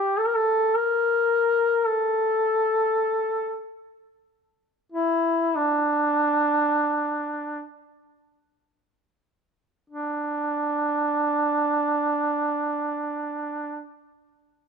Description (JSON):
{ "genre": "caucasian folk, Caucasian lament", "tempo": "free time", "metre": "none", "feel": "none", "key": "unclear", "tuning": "A4 = 440 Hz", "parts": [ { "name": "mellow duduk", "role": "solo", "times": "0.0-13.8 s", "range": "D4 to Bb4", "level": "-22 LUFS", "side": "equal", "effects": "none" } ], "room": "moderate recital hall reverb, RT60 1.6 s", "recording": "close, detailed microphones", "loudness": "-22 LUFS", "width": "side -6 dB against mid", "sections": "0.0-9.9 A section; 9.9-13.4 B section", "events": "slowing down 3.0-9.9", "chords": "none", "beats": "free time" }